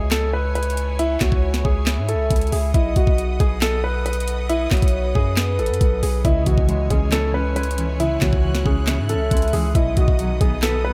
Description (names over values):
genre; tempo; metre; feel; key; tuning
hip hop, trap; 137 BPM; 4/4; half-time; C# minor; A4 = 440 Hz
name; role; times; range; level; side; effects
dark grand piano; melody; 0.0-10.9 s; E4 to B4; -27 LUFS; equal; low-pass filter, dub echo
warm velvety synth lead; second line; 0.0-10.6 s; B4 to E5; -32 LUFS; equal; chorus, dub echo
bright symphonic string section; sustained chords; 0.0-10.9 s; E4 to F#6; -37 LUFS; equal; none
long sustained 808-style bass; bass; 0.0-10.9 s; A1 to G#2; -24 LUFS; equal; none
trap drum kit; drums; 0.1-10.7 s; handclaps, hi-hat, kick drum, snare drum; -23 LUFS; equal; none
mellow electric guitar; accompaniment; 6.2-10.9 s; B2 to C#5; -28 LUFS; equal; tremolo, low-pass filter, dub echo
room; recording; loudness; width
digital ambience; echo-heavy mix; -20 LUFS; mono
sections
0.0-10.9 A section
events
none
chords
0.0 C#m; 2.7 B; 6.2 C#m; 9.8 B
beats
0.12 0.55 | 0.99 1.43 1.87 2.31 | 2.74 3.18 3.62 4.06 | 4.50 4.93 5.37 5.81 | 6.25 6.68 7.12 7.56 | 8.00 8.44 8.88 9.31 | 9.75 10.19 10.63